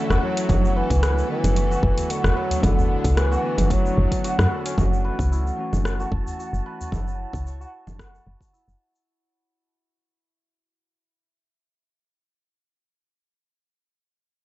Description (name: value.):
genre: organic downtempo.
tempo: 112 BPM.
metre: 4/4.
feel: swing 54% on 16ths.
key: F# minor.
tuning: A4 = 439 Hz.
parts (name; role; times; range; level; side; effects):
mellow duduk; melody; 0.0-4.5 s; D3 to F#3; -27 LUFS; equal; analog delay.
bell-like tine electric piano; accompaniment; 0.0-6.9 s; D3 to F#4; -32 LUFS; left 1 dB; sidechain pumping, tape echo.
bowed-like drone; sustained chords; 0.0-4.8 s; F#3 to A4; -33 LUFS; equal; built-in reverb, sidechain pumping.
santur; arpeggios; 0.0-12.0 s; C#4 to C#5; -31 LUFS; equal; low-pass filter, tape echo.
woody FM bass; bass; 0.1-8.8 s; F#1 to F#2; -21 LUFS; equal; none.
deep house drum kit; drums; 0.1-9.0 s; congas, hi-hat, rim click, shaker; -28 LUFS; right 1 dB; overdrive.
udu; percussion; 0.1-6.9 s; none; -30 LUFS; left 1 dB; none.
electronic kick drum; drums; 0.5-8.5 s; none; -26 LUFS; equal; overdrive.
wind-like tuned noise texture; texture; 5.2-9.1 s; A5; -45 LUFS; right 6 dB; built-in reverb.
room: little or no reverb.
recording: dry, gritty hardware recording, cassette tape, nothing above 7.9 kHz.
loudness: -19 LUFS.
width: side -16 dB against mid.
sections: 0.0-4.8 A section; 4.8-9.1 B section.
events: fade-out 4.8-9.1.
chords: 0.5 Bm7/F#; 4.8 F#m7.